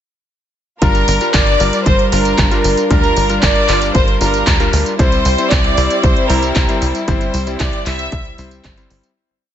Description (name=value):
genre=italo disco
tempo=115 BPM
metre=4/4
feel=straight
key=G dorian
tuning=A4 = 440 Hz
part: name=clear studio violin section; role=melody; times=0.8-8.6 s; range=Bb4 to E5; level=-18 LUFS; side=equal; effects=none
part: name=warm studio string section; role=sustained chords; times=0.8-9.1 s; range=G3 to Bb4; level=-21 LUFS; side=equal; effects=none
part: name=bright electric grand piano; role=stabs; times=0.8-9.1 s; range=G3 to C5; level=-21 LUFS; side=left 3 dB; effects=none
part: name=tight sequencer bass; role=bass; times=0.8-9.0 s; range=G1 to D2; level=-18 LUFS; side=equal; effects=none
part: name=electronic kick drum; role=drums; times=0.8-8.7 s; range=none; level=-16 LUFS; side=equal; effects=none
part: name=house drum kit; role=drums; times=0.8-9.1 s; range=handclaps, hi-hat, tambourine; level=-21 LUFS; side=right 1 dB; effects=gated reverb
room=light reverb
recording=nothing above 8.0 kHz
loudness=-12 LUFS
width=side -10 dB against mid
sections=0.8-9.2 chorus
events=fade-out 6.4-9.2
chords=0.8 Gm7; 5.0 C